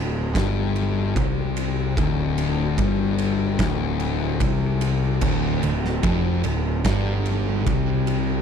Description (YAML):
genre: stoner and doom metal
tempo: 74 BPM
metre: 4/4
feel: straight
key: D minor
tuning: A4 = 441 Hz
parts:
  - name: thick fuzz guitar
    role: riff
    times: 0.0-8.4 s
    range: D2 to C3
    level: -24 LUFS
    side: left 10 dB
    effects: distortion
  - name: fuzz picked electric bass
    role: bass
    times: 0.0-8.4 s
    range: D1 to C2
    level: -25 LUFS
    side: right 1 dB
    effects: overdrive
  - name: oversized low-tuned drum kit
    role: drums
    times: 0.3-8.3 s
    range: crash cymbal, kick drum, ride cymbal, snare drum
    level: -26 LUFS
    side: right 2 dB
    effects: none
  - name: thick fuzz guitar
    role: riff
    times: 5.2-8.4 s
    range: D2 to C3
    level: -26 LUFS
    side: right 10 dB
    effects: distortion
room: little or no reverb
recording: none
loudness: -20 LUFS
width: side -7 dB against mid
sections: 0.0-8.4 A section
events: none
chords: 0.0 Dm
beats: 0.36 1.17 | 1.98 2.79 3.60 4.41 | 5.22 6.04 6.85 7.67